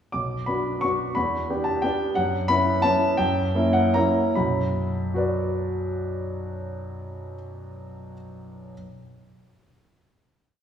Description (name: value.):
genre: classical, piano waltz.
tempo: 136-188 BPM.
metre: 3/4.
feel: rubato.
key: B minor.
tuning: A4 = 439 Hz.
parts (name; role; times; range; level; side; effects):
warm grand piano; solo; 0.1-8.7 s; B1 to D6; -23 LUFS; equal; none.
room: wet concert hall reverb, RT60 1.7 s.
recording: heard from further back in the room, small room ambience.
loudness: -21 LUFS.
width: side -8 dB against mid.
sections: 0.1-4.4 A section; 4.4-6.7 final chord.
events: slowing down 1.7-4.4.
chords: 0.1 Bm; 1.2 Em7; 2.2 F#7sus4; 3.2 F#7b9; 4.4 Bm.